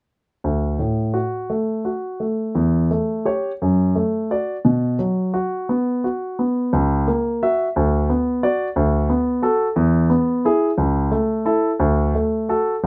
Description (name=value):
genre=classical, baroque-style suite movement for grand piano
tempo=58 BPM (dotted quarters)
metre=6/8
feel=rubato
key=D major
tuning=A4 = 440 Hz
part: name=warm grand piano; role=solo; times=0.4-12.9 s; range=C#2 to E5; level=-20 LUFS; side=equal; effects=none
room=light reverb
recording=none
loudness=-20 LUFS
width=mono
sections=0.4-12.9 A section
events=none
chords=0.4 D; 2.6 A7/E; 3.6 D/F#; 4.6 B5; 6.7 F#7/C#; 7.8 Bm/D; 8.8 Bm7/D; 9.8 E; 10.8 A/C#; 11.8 D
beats=| 0.44 1.50 | 2.56 3.61 | 4.65 5.69 | 6.73 7.76 | 8.76 9.76 | 10.78 11.79 | 12.83